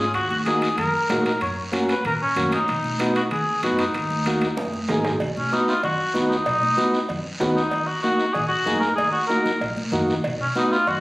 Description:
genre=latin, cumbia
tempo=190 BPM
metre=4/4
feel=straight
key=unclear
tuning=A4 = 440 Hz
part: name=mellow cor anglais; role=melody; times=0.0-11.0 s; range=Db4 to Db5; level=-22 LUFS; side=left 1 dB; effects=plate reverb
part: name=combo organ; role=accompaniment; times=0.0-10.8 s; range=Bb3 to Ab4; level=-24 LUFS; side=equal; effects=none
part: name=upright bass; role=bass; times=0.0-11.0 s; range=Ab1 to Bb2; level=-32 LUFS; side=equal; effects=none
part: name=timbales and cowbell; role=percussion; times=0.1-11.0 s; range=none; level=-30 LUFS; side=right 1 dB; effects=none
part: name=guiro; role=percussion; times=0.2-11.0 s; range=none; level=-34 LUFS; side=right 1 dB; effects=none
part: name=congas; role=percussion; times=0.3-11.0 s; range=none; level=-30 LUFS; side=equal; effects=none
room=moderate large studio reverb, RT60 0.9 s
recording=recorded on a phone in the room, studio reverb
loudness=-20 LUFS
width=side -20 dB against mid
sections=0.0-5.2 A section; 5.2-11.0 B section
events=drum fill 4.4-5.2, 9.5-10.2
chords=0.2 Ebm; 1.4 Gb; 2.7 B; 3.9 Ebm; 5.2 B; 7.7 Ebm; 10.2 B

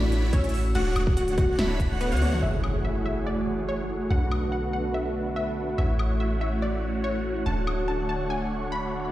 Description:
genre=future bass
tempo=143 BPM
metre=4/4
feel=half-time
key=unclear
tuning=A4 = 439 Hz
part: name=wide unison pluck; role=melody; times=0.0-9.0 s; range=B3 to B5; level=-32 LUFS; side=left 1 dB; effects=sidechain pumping, dub echo
part: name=airy breathy pad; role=sustained chords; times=0.2-9.1 s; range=D3 to C#5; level=-34 LUFS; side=equal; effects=chorus, sidechain pumping
part: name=airy dreamy lead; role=arpeggios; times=0.0-2.4 s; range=E6 to B6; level=-39 LUFS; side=left 1 dB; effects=chorus, sidechain pumping
part: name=supersaw chords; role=riff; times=0.0-9.1 s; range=A3 to B5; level=-30 LUFS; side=right 1 dB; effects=phaser, cassette tape, sidechain pumping, low-pass filter
part: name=warm 808-style bass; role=bass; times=0.0-9.1 s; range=D1 to D2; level=-28 LUFS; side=equal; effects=sidechain pumping
part: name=big-room dance drum kit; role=drums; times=0.1-7.8 s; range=crash cymbal, hi-hat, snare drum, toms, woodblock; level=-34 LUFS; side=left 1 dB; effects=overdrive
part: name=electronic kick drum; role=drums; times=0.3-1.9 s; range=none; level=-23 LUFS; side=equal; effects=none
part: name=impact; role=sound effects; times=2.4-4.1 s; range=none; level=-34 LUFS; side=equal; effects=none
room=moderate lush hall reverb, RT60 2.0 s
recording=played on a big sound system in a bare room, stone room reverb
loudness=-24 LUFS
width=side -14 dB against mid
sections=0.0-2.4 A section; 2.4-9.1 B section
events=drop 0.0-2.4; drum fill 2.2; impact 2.4-4.1; filter sweep on analog synth pad 2.4-9.1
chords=0.0 A6; 0.8 Dmaj7; 2.4 F#m9; 4.1 Bm7; 5.8 A6; 7.5 Dmaj7

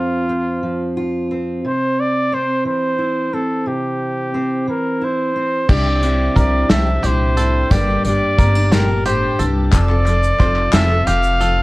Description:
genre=indie folk with a building arrangement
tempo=59 BPM (dotted quarters)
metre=6/8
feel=straight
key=unclear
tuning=A4 = 440 Hz
part: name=clear trumpet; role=melody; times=0.0-11.6 s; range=F4 to F5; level=-20 LUFS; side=equal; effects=none
part: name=fingerpicked steel-string acoustic guitar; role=accompaniment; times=0.0-9.7 s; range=F2 to G4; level=-21 LUFS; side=equal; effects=none
part: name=picked steel-string acoustic guitar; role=accompaniment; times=5.7-11.6 s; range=G2 to A4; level=-24 LUFS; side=left 2 dB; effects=none
part: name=bluegrass banjo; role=arpeggios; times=5.7-11.6 s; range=G4 to A5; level=-27 LUFS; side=right 2 dB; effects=tape echo
part: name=upright bass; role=bass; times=5.7-11.6 s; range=F1 to C2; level=-18 LUFS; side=equal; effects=none
part: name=unplugged drum kit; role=drums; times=5.7-11.6 s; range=crash cymbal, hi-hat, kick drum, snare drum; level=-17 LUFS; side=equal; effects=none
part: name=group handclap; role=percussion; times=9.7-11.0 s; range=none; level=-27 LUFS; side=left 6 dB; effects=none
part: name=tube shaker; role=percussion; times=9.7-11.5 s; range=none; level=-38 LUFS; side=right 6 dB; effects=none
room=light reverb, small room ambience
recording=worn, warbling old tape, cassette tape, warbly pitch drift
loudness=-15 LUFS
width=side -20 dB against mid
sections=0.0-5.7 A section; 5.7-11.6 B section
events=none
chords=0.0 F5; 1.6 C; 5.7 Cadd9; 7.7 Gm; 9.7 F

